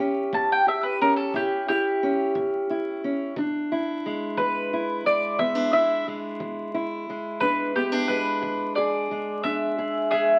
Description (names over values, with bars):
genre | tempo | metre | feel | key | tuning
acoustic country blues, solo or duo | 59 BPM (dotted quarters) | 12/8 | straight | E mixolydian | A4 = 443 Hz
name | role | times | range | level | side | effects
fingerpicked steel-string acoustic guitar | accompaniment | 0.0-10.4 s | E2 to G#4 | -30 LUFS | equal | none
mandolin | melody | 0.3-10.4 s | G4 to A5 | -25 LUFS | equal | none
kick drum | drums | 0.3-9.6 s | none | -48 LUFS | equal | none
room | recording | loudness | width
moderate studio reverb, RT60 0.8 s | very old 78 rpm record, vinyl crackle | -25 LUFS | mono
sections
0.0-10.4 A section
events
mandolin solo 0.0-10.4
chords
0.0 A7; 3.4 E7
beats
0.33 1.34 2.35 | 3.37 4.38 5.39 6.40 | 7.41 8.42 9.44